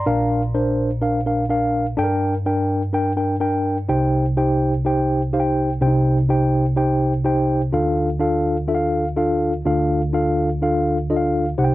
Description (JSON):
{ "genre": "soul", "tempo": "125 BPM", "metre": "4/4", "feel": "straight", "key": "C dorian", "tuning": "A4 = 441 Hz", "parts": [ { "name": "mellow tine electric piano", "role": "solo", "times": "0.0-11.7 s", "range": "Bb1 to Bb5", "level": "-17 LUFS", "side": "equal", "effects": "medium stereo tremolo" } ], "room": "wet studio reverb, RT60 0.5 s", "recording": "dark, warm production", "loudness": "-17 LUFS", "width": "side -16 dB against mid", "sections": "0.0-3.9 A section; 3.9-11.7 B section", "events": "none", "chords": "0.1 Bb; 2.0 Gm; 3.9 Cm; 7.7 Dm" }